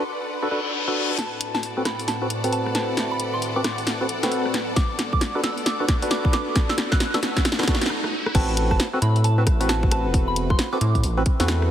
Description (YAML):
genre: UK garage, two-step garage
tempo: 134 BPM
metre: 4/4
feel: swing 62% on 16ths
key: A dorian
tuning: A4 = 440 Hz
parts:
  - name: soft synth bell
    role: melody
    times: 0.0-10.8 s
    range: A5 to F#6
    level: -30 LUFS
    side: right 2 dB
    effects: chorus, phaser, ping-pong delay
  - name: soft string machine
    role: sustained chords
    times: 0.0-11.7 s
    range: A2 to B4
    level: -34 LUFS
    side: equal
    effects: phaser, ensemble chorus, sidechain pumping
  - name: percussive organ stab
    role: stabs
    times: 0.0-11.7 s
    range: C4 to B4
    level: -27 LUFS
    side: equal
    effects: analog chorus, tape echo
  - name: rich symphonic string section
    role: texture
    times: 0.0-7.9 s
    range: B3 to F#5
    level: -34 LUFS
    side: left 2 dB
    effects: sidechain pumping
  - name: reverse cymbal, riser and swell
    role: sound effects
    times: 0.4-8.3 s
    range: none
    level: -32 LUFS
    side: left 2 dB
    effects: none
  - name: punchy analog drum machine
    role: drums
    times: 1.2-11.7 s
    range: crash cymbal, hi-hat, rim click, snare drum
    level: -25 LUFS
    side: equal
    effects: overdrive, low-pass filter on snare, low-pass filter on hats, low-pass filter on cymbals
  - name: electronic kick drum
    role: drums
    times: 4.8-11.4 s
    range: none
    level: -22 LUFS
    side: equal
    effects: none
  - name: rubbery square bass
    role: bass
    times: 8.3-11.7 s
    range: E1 to A2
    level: -21 LUFS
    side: equal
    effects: none
room: moderate lush hall reverb, RT60 2.4 s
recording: heavily compressed radio sound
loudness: -20 LUFS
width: side -10 dB against mid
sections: 0.0-1.2 A section; 1.2-8.3 B section; 8.3-11.7 C section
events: reverse cymbal 0.4-1.2; build-up 1.2-8.3; drum fill 1.2-7.9, 7.9-8.3; riser 1.2-8.3; filter sweep on synth stab 1.2-8.3; swell 7.5-8.3; break 7.9-8.3; drop 8.3-11.7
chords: 0.0 Bm7; 1.2 Am69; 4.5 Bm7; 8.3 Am69